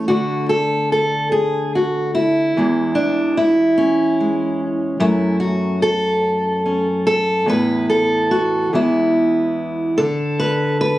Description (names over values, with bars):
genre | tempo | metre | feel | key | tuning
folk, solo fingerstyle acoustic guitar | 48 BPM (dotted quarters) | 6/8 | rubato | unclear | A4 = 440 Hz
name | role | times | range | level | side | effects
fingerpicked steel-string acoustic guitar | solo | 0.0-11.0 s | E2 to B4 | -15 LUFS | equal | none
room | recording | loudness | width
light reverb | recorded on a phone in the room, studio ambience, compression | -15 LUFS | side -15 dB against mid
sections
0.1-11.0 A section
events
none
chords
0.1 D5; 2.6 C#m/E; 5.0 F#m; 7.5 Esus4; 8.7 E; 10.0 N.C.